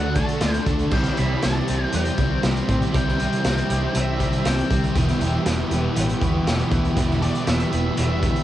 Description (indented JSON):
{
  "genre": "rock, shoegaze and dream pop",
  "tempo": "119 BPM",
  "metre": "4/4",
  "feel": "straight",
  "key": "unclear",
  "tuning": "A4 = 440 Hz",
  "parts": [
    { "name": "octave-fuzz lead guitar", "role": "melody", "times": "0.0-8.4 s", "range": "D5 to B5", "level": "-31 LUFS", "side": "left 1 dB", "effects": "distortion, cassette tape, tape echo" },
    { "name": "warm analog pad", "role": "sustained chords", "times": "0.0-8.4 s", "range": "E4 to A5", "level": "-33 LUFS", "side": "equal", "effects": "chorus" },
    { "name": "twelve-string electric guitar", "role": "arpeggios", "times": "0.0-8.4 s", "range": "F#3 to E4", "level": "-35 LUFS", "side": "right 7 dB", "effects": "none" },
    { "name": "biting overdriven guitar", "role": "riff", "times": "0.0-8.4 s", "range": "E2 to D4", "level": "-28 LUFS", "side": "equal", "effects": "none" },
    { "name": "overdriven semi-hollow guitar", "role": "riff", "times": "0.0-8.4 s", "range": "E2 to F#4", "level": "-28 LUFS", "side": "right 6 dB", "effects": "reverse reverb" },
    { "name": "thick fuzz guitar", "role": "riff", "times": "0.0-8.4 s", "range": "E2 to D4", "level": "-28 LUFS", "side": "left 6 dB", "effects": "distortion, ensemble chorus" },
    { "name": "vintage muted fingered electric bass", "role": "bass", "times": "0.0-8.3 s", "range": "E1 to A2", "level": "-25 LUFS", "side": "equal", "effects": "none" },
    { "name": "raw garage drum kit", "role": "drums", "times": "0.2-8.4 s", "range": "crash cymbal, hi-hat, kick drum, snare drum", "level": "-24 LUFS", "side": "equal", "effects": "none" }
  ],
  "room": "light reverb",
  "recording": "home recording on cassette, nothing above 10.4 kHz",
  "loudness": "-19 LUFS",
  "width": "side -13 dB against mid",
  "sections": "0.0-8.4 A section",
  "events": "none",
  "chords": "0.0 D; 0.9 C; 5.0 Em"
}